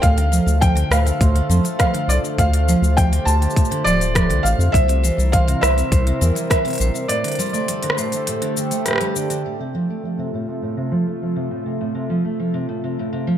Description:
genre	folktronica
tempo	102 BPM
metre	4/4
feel	straight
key	unclear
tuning	A4 = 441 Hz
part	felt-muted upright piano	melody	0.0-8.8 s	D5 to A5	-23 LUFS	equal	ping-pong delay
part	vibraphone with medium mallets	second line	0.0-9.5 s	G4 to C6	-27 LUFS	equal	digital delay
part	warbly tape-like pad	sustained chords	0.0-13.4 s	C3 to Bb4	-28 LUFS	equal	chorus, built-in reverb
part	picked steel-string acoustic guitar	arpeggios	0.0-13.4 s	A2 to A3	-24 LUFS	right 2 dB	low-pass filter, ping-pong delay
part	round analog bass	bass	0.0-6.9 s	D1 to F2	-17 LUFS	equal	none
part	electronic kick drum	drums	0.0-6.6 s	none	-18 LUFS	equal	none
part	organic electronic drum kit	drums	0.0-9.4 s	cabasa, hi-hat, rim click	-24 LUFS	left 1 dB	low-pass filter on hats, low-pass filter on perc, low-pass filter on snare, low-pass filter on room
room	light reverb, digital ambience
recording	none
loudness	-17 LUFS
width	side -10 dB against mid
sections	0.0-9.4 A section; 9.4-13.4 B section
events	break 7.1-9.4; filter sweep on steel-string acoustic guitar 9.4-13.4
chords	0.0 Dm; 4.7 C7; 7.1 Gsus2; 9.4 F

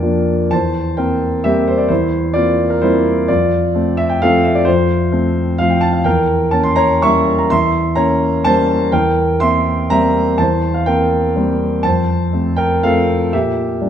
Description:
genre	classical, piano waltz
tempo	116-139 BPM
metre	3/4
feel	rubato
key	F major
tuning	A4 = 440 Hz
part	warm concert grand piano	solo	0.0-13.9 s	E2 to C#6	-13 LUFS	equal	none
room	wet recital hall reverb, RT60 1.5 s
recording	minimal, uncompressed stereo recording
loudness	-13 LUFS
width	side -9 dB against mid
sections	0.0-13.9 A section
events	none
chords	0.0 Bb/F; 0.5 C7/E; 3.3 F; 6.1 Edim7; 8.9 C7/E; 11.8 F; 13.3 Gm/Bb

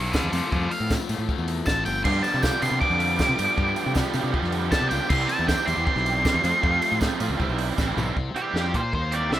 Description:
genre	indie rock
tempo	157 BPM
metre	4/4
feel	straight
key	C major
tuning	A4 = 439 Hz
part	octave-fuzz lead guitar	melody	0.0-9.4 s	E4 to D6	-25 LUFS	equal	distortion, slapback echo
part	overdriven electric guitar	riff	0.0-9.4 s	G2 to Bb4	-32 LUFS	left 8 dB	none
part	fuzz fingered electric bass	bass	0.0-9.4 s	G1 to C3	-27 LUFS	equal	overdrive
part	tambourine	percussion	0.0-8.1 s	none	-43 LUFS	right 2 dB	none
part	compact cocktail drum kit	drums	0.1-9.4 s	crash cymbal, hi-hat, kick drum, snare drum, toms	-27 LUFS	equal	none
part	crunchy overdriven guitar	riff	2.0-9.4 s	F2 to G4	-28 LUFS	right 8 dB	ensemble chorus, slapback echo
room	light reverb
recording	rough home demo mix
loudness	-21 LUFS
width	side -12 dB against mid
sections	0.0-8.2 A section; 8.2-9.4 B section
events	lead electric guitar solo 0.0-8.2; drum fill 7.8-8.2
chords	0.3 Fmaj7; 2.0 G7sus4; 5.1 Cmaj7; 6.4 F; 7.4 Cmaj7; 8.2 C

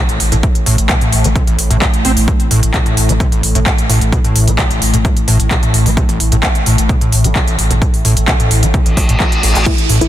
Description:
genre	driving peak-time techno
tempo	130 BPM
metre	4/4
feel	straight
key	A minor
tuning	A4 = 440 Hz
part	overdriven acid bass	riff	0.0-10.0 s	A1 to C4	-16 LUFS	equal	ensemble chorus, sidechain pumping
part	analog drone	drone	0.0-10.1 s	A2	-21 LUFS	left 1 dB	chorus, sidechain pumping
part	techno drum kit	drums	0.1-10.1 s	crash cymbal, handclaps, hi-hat	-17 LUFS	equal	overdrive
part	saturated sub bass	bass	0.2-10.1 s	A1	-17 LUFS	equal	sidechain pumping, low-pass filter
part	electronic kick drum	drums	0.4-9.8 s	none	-15 LUFS	equal	overdrive
part	reverse cymbal	sound effects	8.9-9.7 s	none	-18 LUFS	left 2 dB	none
part	filtered dub chord stab	stabs	9.7-10.1 s	E3 to E4	-17 LUFS	left 2 dB	phaser, sidechain pumping
room	light reverb, digital ambience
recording	dense, heavily limited modern master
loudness	-10 LUFS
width	side -12 dB against mid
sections	0.0-10.1 A section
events	reverse cymbal 8.9-9.7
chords	0.0 A5

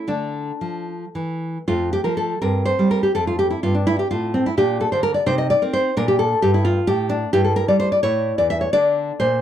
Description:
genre	classical, baroque-style dance for nylon-string guitar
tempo	74-89 BPM (dotted quarters)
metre	6/8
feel	rubato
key	F major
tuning	A4 = 440 Hz
part	nylon-string guitar	solo	0.0-9.4 s	E2 to E5	-18 LUFS	equal	none
room	little or no reverb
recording	dry, close 1970s-style studio recording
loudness	-17 LUFS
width	side -10 dB against mid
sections	0.0-1.7 A section; 1.7-9.4 A section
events	none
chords	0.1 Dm; 1.7 F; 2.4 C5/G; 3.1 F; 4.6 Bb; 5.3 Cm9; 6.0 Bb; 7.3 Gm69; 8.0 A; 8.7 D5

